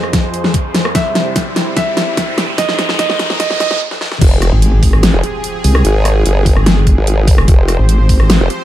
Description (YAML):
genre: heavy wobble dubstep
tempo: 147 BPM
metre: 4/4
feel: half-time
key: F minor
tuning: A4 = 439 Hz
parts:
  - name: dark concert grand piano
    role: melody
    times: 0.0-3.8 s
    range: Eb5 to E5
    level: -20 LUFS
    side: right 2 dB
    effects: dub echo
  - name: supersaw pad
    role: sustained chords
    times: 0.0-8.6 s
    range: F2 to C5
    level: -22 LUFS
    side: right 2 dB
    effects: sidechain pumping, low-pass filter
  - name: dubstep drum kit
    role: drums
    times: 0.0-8.6 s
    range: crash cymbal, hi-hat, rim click, snare drum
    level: -16 LUFS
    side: equal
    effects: overdrive
  - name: riser and impact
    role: sound effects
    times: 0.1-5.8 s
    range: none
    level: -22 LUFS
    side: equal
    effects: none
  - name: electronic kick drum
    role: drums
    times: 0.1-8.2 s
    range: none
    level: -12 LUFS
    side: equal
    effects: overdrive
  - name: formant-sweep wobble bass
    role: bass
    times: 4.2-8.5 s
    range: F1 to Ab1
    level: -12 LUFS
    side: equal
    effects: chorus, overdrive
  - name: vowel-sweep wobble bass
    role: bass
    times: 4.5-8.4 s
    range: F1 to C2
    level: -11 LUFS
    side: equal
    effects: chorus, overdrive
room: little or no reverb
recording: high-pass filter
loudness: -10 LUFS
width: side -13 dB against mid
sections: 0.0-4.2 A section; 4.2-8.6 B section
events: build-up 0.0-4.2; drum fill 0.0-3.8, 3.9-4.2; filter sweep on supersaw synth 0.0-4.2; filter sweep 0.0-4.2; riser 0.1-3.8; stop 3.8-4.2; drop 4.2-8.6; impact 4.2-5.8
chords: 0.0 Fm; 0.9 C; 2.6 Ab; 4.2 Fmadd9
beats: 0.13 0.54 | 0.95 1.36 1.77 2.17 | 2.58 2.99 3.40 3.81 | 4.21 4.62 5.03 5.44 | 5.85 6.25 6.66 7.07 | 7.48 7.89 8.30